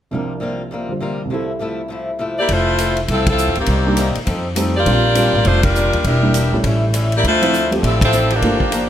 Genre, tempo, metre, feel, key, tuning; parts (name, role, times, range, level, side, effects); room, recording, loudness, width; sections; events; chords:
jazz, big band swing; 203 BPM; 4/4; swing 61% on 8ths; F major; A4 = 441 Hz
picked swing-style acoustic guitar; accompaniment; 0.1-8.9 s; F2 to A4; -25 LUFS; left 2 dB
warm baby grand piano; accompaniment; 0.1-8.6 s; C2 to C5; -22 LUFS; right 1 dB
edgy saxophone section; melody; 2.4-8.9 s; Eb3 to D5; -17 LUFS; left 1 dB
upright bass; bass; 2.5-8.9 s; E1 to F2; -18 LUFS; equal
swinging big-band drum kit; drums; 2.5-8.8 s; hi-hat, kick drum, ride cymbal; -22 LUFS; equal
light reverb; close, detailed microphones; -14 LUFS; side -10 dB against mid
0.1-2.5 A section; 2.5-8.9 B section
band accent 3.2, 5.6, 8.0
0.1 C7sus4; 1.3 Fmaj7/C; 2.5 Fmaj7; 3.7 Cm7; 4.3 F7; 4.9 Bb6; 6.0 Em7b5; 6.6 A7; 7.2 Dm9